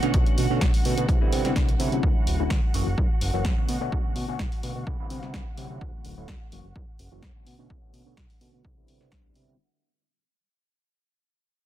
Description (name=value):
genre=filtered disco house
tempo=127 BPM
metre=4/4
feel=straight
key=unclear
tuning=A4 = 440 Hz
part: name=barky tine electric piano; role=accompaniment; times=0.0-9.5 s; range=D3 to F#4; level=-30 LUFS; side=right 1 dB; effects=slow stereo tremolo, phaser, sidechain pumping, low-pass filter
part: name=rich chamber violin section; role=sustained chords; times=0.0-9.6 s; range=F#4 to F#5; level=-37 LUFS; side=right 3 dB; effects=sidechain pumping, low-pass filter
part: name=fat analog bass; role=bass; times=0.0-9.6 s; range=D1 to C3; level=-29 LUFS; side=equal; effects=tube saturation, sidechain pumping, low-pass filter
part: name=punchy analog drum machine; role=drums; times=0.0-9.5 s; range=hi-hat, snare drum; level=-34 LUFS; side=left 1 dB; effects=none
part: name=tube shaker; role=percussion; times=0.0-9.6 s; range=none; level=barely audible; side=none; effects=none
part: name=electronic kick drum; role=drums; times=0.1-9.2 s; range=none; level=-25 LUFS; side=equal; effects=none
room=little or no reverb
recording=dense, heavily limited modern master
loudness=-22 LUFS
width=side -12 dB against mid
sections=0.0-9.6 A section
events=fade-out 0.0-9.6; filter sweep 0.0-9.6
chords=0.0 Bm9; 1.1 Cmaj9; 2.0 Dmaj9; 2.7 F#7; 3.7 Bm9; 4.9 Cmaj9; 5.8 Dmaj9; 6.5 F#7; 7.5 Bm9; 8.6 Cmaj9